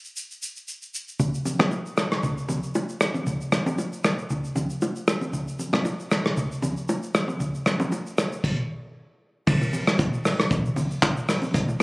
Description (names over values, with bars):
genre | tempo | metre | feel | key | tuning
amapiano | 116 BPM | 4/4 | swing 55% on 16ths | none | none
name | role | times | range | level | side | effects
soft brush drum kit | drums | 0.0-11.8 s | crash cymbal, handclaps, hi-hat, kick drum, rim click, shaker | -24 LUFS | equal | none
congas and bongos | percussion | 1.2-11.8 s | none | -27 LUFS | equal | none
room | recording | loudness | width
moderate plate reverb, RT60 2.0 s | recorded on a phone in the room, club reverb, compression | -23 LUFS | side -26 dB against mid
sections
0.0-9.5 A section; 9.5-11.8 B section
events
stop 8.4-9.5; drop 9.5-11.8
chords
none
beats
0.16 0.68 | 1.20 1.72 2.23 2.75 | 3.27 3.78 4.30 4.82 | 5.34 5.85 6.37 6.89 | 7.41 7.92 8.44 8.96 | 9.47 9.99 10.51 11.03 | 11.54